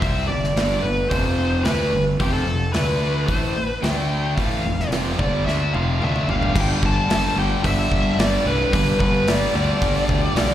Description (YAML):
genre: hard rock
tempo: 110 BPM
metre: 4/4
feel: straight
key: G mixolydian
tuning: A4 = 435 Hz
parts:
  - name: bluesy overdriven lead guitar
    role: melody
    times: 0.0-10.5 s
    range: G4 to A5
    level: -24 LUFS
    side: left 1 dB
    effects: distortion, slapback echo, plate reverb
  - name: sludgy distorted guitar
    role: riff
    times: 0.0-10.5 s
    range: F2 to D4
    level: -24 LUFS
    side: equal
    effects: overdrive
  - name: fuzz fingered electric bass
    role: bass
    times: 0.0-10.5 s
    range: F1 to D2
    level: -23 LUFS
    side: equal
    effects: overdrive
  - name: big rock drum kit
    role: drums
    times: 0.0-10.5 s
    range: crash cymbal, hi-hat, kick drum, snare drum, toms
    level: -25 LUFS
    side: equal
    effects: none
room: light reverb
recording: live gig heard through the venue's PA, recital hall reverb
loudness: -18 LUFS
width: side -11 dB against mid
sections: 0.0-6.6 A section; 6.6-10.5 B section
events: drum fill 5.5-6.6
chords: 0.0 G5; 1.1 F5; 1.7 G; 2.2 F5; 2.7 D5; 3.3 N.C.; 3.8 D5; 4.4 F5; 6.6 G5